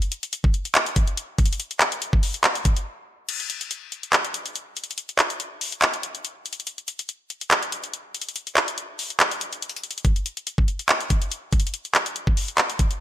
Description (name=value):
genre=hip hop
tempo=142 BPM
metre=4/4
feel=half-time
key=none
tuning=none
part: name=trap drum kit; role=drums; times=0.0-13.0 s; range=crash cymbal, handclaps, hi-hat, kick drum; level=-21 LUFS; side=equal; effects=none
room=light reverb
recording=none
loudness=-22 LUFS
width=side -13 dB against mid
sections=0.0-3.3 A section; 3.3-13.0 B section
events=break 2.9-3.3, 3.3-10.0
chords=none